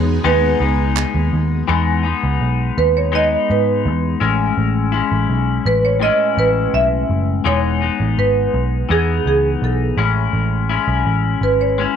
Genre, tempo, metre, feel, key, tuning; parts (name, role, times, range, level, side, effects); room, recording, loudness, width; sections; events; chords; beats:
indie pop, bedroom pop; 83 BPM; 4/4; straight; E major; A4 = 440 Hz
marimba with medium hard mallets; melody; 0.0-12.0 s; G#4 to E5; -18 LUFS; right 2 dB; ensemble chorus, slapback echo
clean electric guitar; accompaniment; 0.0-12.0 s; A2 to E4; -20 LUFS; left 10 dB; lush chorus, warbly pitch drift
string machine, violins; sustained chords; 0.0-1.7 s; B2 to G#4; -25 LUFS; right 1 dB; ensemble chorus
vintage muted picked electric bass; bass; 0.0-11.8 s; E1 to G#2; -18 LUFS; right 1 dB
group handclap; percussion; 1.0-1.1 s; -23 LUFS; right 14 dB
moderate spring reverb, RT60 1.3 s, small room ambience; 1960s-style stereo with parts hard left and right; -14 LUFS; side -8 dB against mid
0.0-1.7 A section; 1.7-12.0 B section
0.0 Emaj7 (rootless); 1.7 Emaj7; 4.2 Amaj7; 7.5 Emaj7; 10.0 Amaj7
0.25 0.97 | 1.69 2.41 3.13 3.85 | 4.57 5.29 6.01 6.73 | 7.45 8.17 8.90 9.62 | 10.34 11.06 11.78